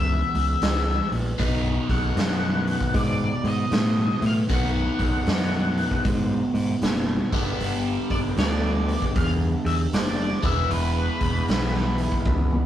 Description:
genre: blues rock power trio and southern rock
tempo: 77 BPM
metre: 4/4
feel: swing 65% on 8ths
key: unclear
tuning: A4 = 440 Hz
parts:
  - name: octave-fuzz lead guitar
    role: melody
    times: 0.0-12.7 s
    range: B4 to F#5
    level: -29 LUFS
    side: left 2 dB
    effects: wah, distortion
  - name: overdriven electric guitar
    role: riff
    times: 0.0-12.7 s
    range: G2 to E4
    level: -27 LUFS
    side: equal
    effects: phaser
  - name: overdriven picked electric bass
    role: bass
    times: 0.0-12.6 s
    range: E1 to A2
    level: -25 LUFS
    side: equal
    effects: none
  - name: raw garage drum kit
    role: drums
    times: 0.3-12.7 s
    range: hi-hat, kick drum, snare drum, toms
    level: -26 LUFS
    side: equal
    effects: none
room: light reverb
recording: rough rehearsal-room recording, tube saturation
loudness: -21 LUFS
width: side -11 dB against mid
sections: 0.0-12.7 A section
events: drum fill 12.3-12.7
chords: 0.0 E; 1.4 B; 7.2 G; 10.3 E

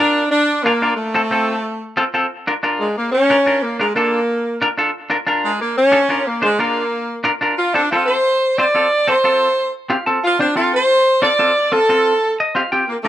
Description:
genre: latin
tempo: 182 BPM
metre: 4/4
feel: straight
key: Bb major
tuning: A4 = 441 Hz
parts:
  - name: warm saxophone section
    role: melody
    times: 0.0-13.1 s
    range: Ab3 to D5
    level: -15 LUFS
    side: equal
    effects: slapback echo
  - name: semi-hollow electric guitar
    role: accompaniment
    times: 0.0-13.1 s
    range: C4 to A5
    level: -18 LUFS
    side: equal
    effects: slapback echo
room: little or no reverb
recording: recorded outdoors, with no room sound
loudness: -14 LUFS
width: side -12 dB against mid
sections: 0.0-2.3 A section; 2.3-12.9 B section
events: saxophone section solo 2.3-12.9; clean electric guitar fill 9.7-10.2, 12.2-12.9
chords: 0.0 Bb; 1.0 F; 2.3 Bb; 7.6 F

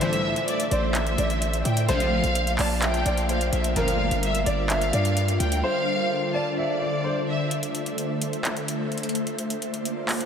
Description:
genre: hip hop, trap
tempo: 128 BPM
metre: 4/4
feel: half-time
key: A phrygian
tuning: A4 = 440 Hz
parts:
  - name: dark baby grand piano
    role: melody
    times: 0.0-7.5 s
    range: Bb4 to E5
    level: -29 LUFS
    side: equal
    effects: low-pass filter, diffuse ambient delay
  - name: warm studio violin section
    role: second line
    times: 0.0-7.5 s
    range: C5 to A5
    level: -29 LUFS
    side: equal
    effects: diffuse ambient delay
  - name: ethereal airy pad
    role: sustained chords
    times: 0.0-10.3 s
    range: D3 to E5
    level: -29 LUFS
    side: equal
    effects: ensemble chorus, built-in reverb
  - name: sync-sweep polysynth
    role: stabs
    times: 0.0-4.1 s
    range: C2 to F3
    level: -33 LUFS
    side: left 2 dB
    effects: none
  - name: trap drum kit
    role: drums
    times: 0.0-10.3 s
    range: handclaps, hi-hat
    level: -31 LUFS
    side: equal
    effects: overdrive
  - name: distorted 808-style bass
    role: bass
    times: 0.7-5.6 s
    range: G1 to A2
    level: -25 LUFS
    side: equal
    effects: distortion
room: wet huge ambient reverb, RT60 7.9 s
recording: dreamy mix soaked in reverb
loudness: -22 LUFS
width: side -7 dB against mid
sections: 0.0-7.5 A section; 7.5-10.3 B section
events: break 0.0-0.5, 7.5-10.3; drums muted 5.6-7.5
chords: 0.0 Am; 1.9 Bbadd9; 3.8 Gm7; 5.6 Dm; 7.5 Am; 9.4 Bbadd9

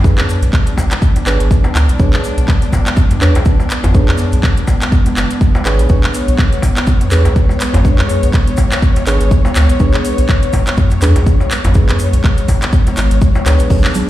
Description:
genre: afro house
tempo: 123 BPM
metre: 4/4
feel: swing 56% on 16ths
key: B dorian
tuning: A4 = 440 Hz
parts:
  - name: muted studio string section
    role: sustained chords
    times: 0.0-14.1 s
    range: G#3 to C#5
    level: -21 LUFS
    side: left 2 dB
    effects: sidechain pumping
  - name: deep mellow chord stab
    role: stabs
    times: 0.0-14.1 s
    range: D4 to C#5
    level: -22 LUFS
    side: right 3 dB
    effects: chorus, sidechain pumping, ping-pong delay
  - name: warm sub bass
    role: bass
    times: 0.0-13.8 s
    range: F#1 to E2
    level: -13 LUFS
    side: equal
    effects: sidechain pumping
  - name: electronic kick drum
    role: drums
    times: 0.0-13.8 s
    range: none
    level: -12 LUFS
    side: equal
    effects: none
  - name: maracas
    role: percussion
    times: 0.0-14.1 s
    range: none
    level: -35 LUFS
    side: left 2 dB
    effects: none
  - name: house drum kit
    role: drums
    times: 0.2-14.1 s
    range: crash cymbal, handclaps, hi-hat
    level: -21 LUFS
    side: right 1 dB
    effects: none
  - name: darbuka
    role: percussion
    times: 0.2-13.6 s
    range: none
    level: -19 LUFS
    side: left 1 dB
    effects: none
  - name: congas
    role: percussion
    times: 13.7-14.1 s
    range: none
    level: -19 LUFS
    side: right 3 dB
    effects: none
room: small room ambience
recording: played on a big sound system in a bare room, large studio reverb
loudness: -10 LUFS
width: side -14 dB against mid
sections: 0.0-14.1 A section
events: none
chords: 0.0 Bm69

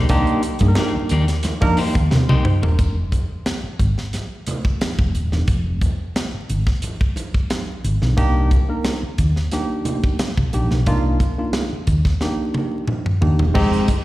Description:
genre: funk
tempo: 89 BPM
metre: 4/4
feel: straight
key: F dorian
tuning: A4 = 435 Hz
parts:
  - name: electric guitar at the edge of break-up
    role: accompaniment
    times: 0.0-2.7, 13.6-13.9 s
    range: Ab3 to D5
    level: -25 LUFS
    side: left 5 dB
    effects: spring reverb, slapback echo
  - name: hollow-body short-scale fingered electric bass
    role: bass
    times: 0.0-13.8 s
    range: Eb1 to C3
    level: -18 LUFS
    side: equal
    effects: none
  - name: tine electric piano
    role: stabs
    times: 0.1-2.9, 8.2-13.9 s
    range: Ab3 to Eb5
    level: -23 LUFS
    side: right 2 dB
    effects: medium stereo tremolo, slapback echo
  - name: tight funk drum kit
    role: drums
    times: 0.1-14.0 s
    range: crash cymbal, hi-hat, kick drum, snare drum, toms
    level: -21 LUFS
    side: equal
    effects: none
  - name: congas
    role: percussion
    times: 0.1-14.0 s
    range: none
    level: -30 LUFS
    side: right 3 dB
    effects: slapback echo
room: studio reverb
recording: live gig heard through the venue's PA, recital hall reverb, vinyl crackle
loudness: -17 LUFS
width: side -17 dB against mid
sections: 0.0-2.8 A section; 2.8-13.6 B section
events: drum fill 2.1-2.8, 12.2-13.6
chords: 0.0 Cm7; 2.8 Fm; 8.2 Cm7

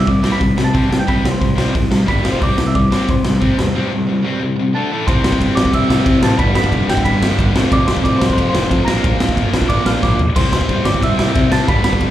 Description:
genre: punk rock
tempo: 182 BPM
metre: 4/4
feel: straight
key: unclear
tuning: A4 = 440 Hz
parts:
  - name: celesta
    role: melody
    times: 0.0-12.1 s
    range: C5 to B6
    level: -22 LUFS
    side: equal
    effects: slapback echo, digital delay
  - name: crunchy overdriven guitar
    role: riff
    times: 0.0-12.1 s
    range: F2 to G4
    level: -21 LUFS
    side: right 6 dB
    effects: slapback echo
  - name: tight distorted guitar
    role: riff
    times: 0.0-12.1 s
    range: F2 to D4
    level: -20 LUFS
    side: left 6 dB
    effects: distortion, slapback echo
  - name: fuzz picked electric bass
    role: bass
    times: 0.1-12.1 s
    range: F1 to C3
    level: -20 LUFS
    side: equal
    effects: overdrive
  - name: raw garage drum kit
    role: drums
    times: 0.1-12.1 s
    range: crash cymbal, hi-hat, kick drum, ride cymbal, snare drum, toms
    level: -17 LUFS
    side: equal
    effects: none
room: little or no reverb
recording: live gig heard through the venue's PA, club reverb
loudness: -13 LUFS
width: side -12 dB against mid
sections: 0.0-5.1 A section; 5.1-12.1 B section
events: break 3.7-5.1; drum fill 10.0-10.4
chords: 0.0 C5; 2.1 G5; 2.2 F5; 2.4 C5; 4.7 D5; 4.9 A5; 5.1 C; 6.4 G; 7.6 F; 8.9 Bb; 10.4 C

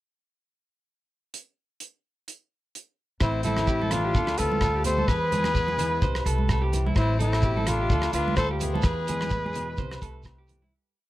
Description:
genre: highlife guitar band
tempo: 128 BPM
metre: 4/4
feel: swing 55% on 16ths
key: A minor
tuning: A4 = 436 Hz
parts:
  - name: damped 70s drum kit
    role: drums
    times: 1.3-10.6 s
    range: hi-hat, kick drum, rim click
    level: -28 LUFS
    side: equal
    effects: none
  - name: warm trumpet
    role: melody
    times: 3.2-10.5 s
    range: E4 to C5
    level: -28 LUFS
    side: left 1 dB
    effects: tape echo
  - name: raspy tenor saxophone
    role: second line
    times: 3.2-9.8 s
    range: C4 to A4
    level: -36 LUFS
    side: left 9 dB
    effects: none
  - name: fingerpicked plugged-in swing-style acoustic guitar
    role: accompaniment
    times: 3.2-10.7 s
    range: E2 to F4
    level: -35 LUFS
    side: left 4 dB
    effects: none
  - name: electric guitar through a small old amp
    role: arpeggios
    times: 3.2-10.7 s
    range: E4 to C5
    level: -33 LUFS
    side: right 5 dB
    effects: tape echo
  - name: upright bass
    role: bass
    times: 3.2-10.7 s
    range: A1 to E2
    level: -28 LUFS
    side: equal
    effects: none
  - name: agogo bells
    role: percussion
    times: 3.2-10.4 s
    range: none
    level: -38 LUFS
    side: right 1 dB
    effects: none
  - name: shekere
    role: percussion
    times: 3.2-10.6 s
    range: none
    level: -32 LUFS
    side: right 2 dB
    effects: none
  - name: congas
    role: percussion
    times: 3.5-10.7 s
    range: none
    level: -33 LUFS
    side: right 3 dB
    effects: none
room: light reverb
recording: none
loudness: -22 LUFS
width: side -16 dB against mid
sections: 1.3-3.2 pickup bar; 3.2-10.7 A section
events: fade-out 8.8-10.7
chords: 1.3 N.C.; 3.2 Am; 4.2 Dm7; 5.1 E; 6.0 C6; 7.0 Am; 7.9 Dm7; 8.8 E; 9.8 C6

